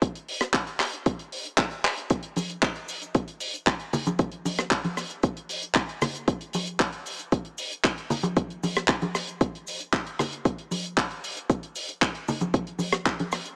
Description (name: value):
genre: nu-disco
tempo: 115 BPM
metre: 4/4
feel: straight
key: none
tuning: none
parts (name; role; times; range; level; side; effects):
- electronic kick drum; drums; 0.0-13.2 s; none; -27 LUFS; equal; none
- tight funk drum kit; drums; 0.0-13.6 s; handclaps, hi-hat, rim click; -30 LUFS; equal; none
- cabasa and congas; percussion; 2.1-13.6 s; none; -33 LUFS; equal; none
room: light reverb, small room ambience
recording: small speaker sound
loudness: -28 LUFS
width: mono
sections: 0.0-13.6 A section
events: drum fill 1.8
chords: none